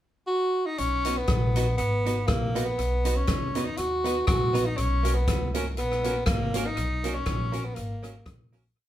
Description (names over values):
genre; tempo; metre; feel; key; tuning
ska; 120 BPM; 4/4; swing 55% on 8ths; B major; A4 = 440 Hz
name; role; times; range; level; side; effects
clear tenor saxophone; melody; 0.3-8.3 s; A#3 to F#4; -28 LUFS; equal; none
upright bass; bass; 0.8-8.7 s; G#1 to D#2; -29 LUFS; equal; none
swinging big-band drum kit; drums; 0.8-8.6 s; hi-hat, kick drum, rim click; -30 LUFS; equal; dub echo
archtop guitar, miked and amplified; accompaniment; 1.1-8.6 s; A#3 to B4; -32 LUFS; right 3 dB; dub echo
room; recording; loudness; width
moderate large studio reverb, RT60 0.9 s; band playing live in one room; -24 LUFS; side -12 dB against mid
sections
0.0-0.8 pickup bar; 0.8-8.8 head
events
fade-out 6.8-8.8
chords
0.0 N.C.; 0.8 B; 4.8 F#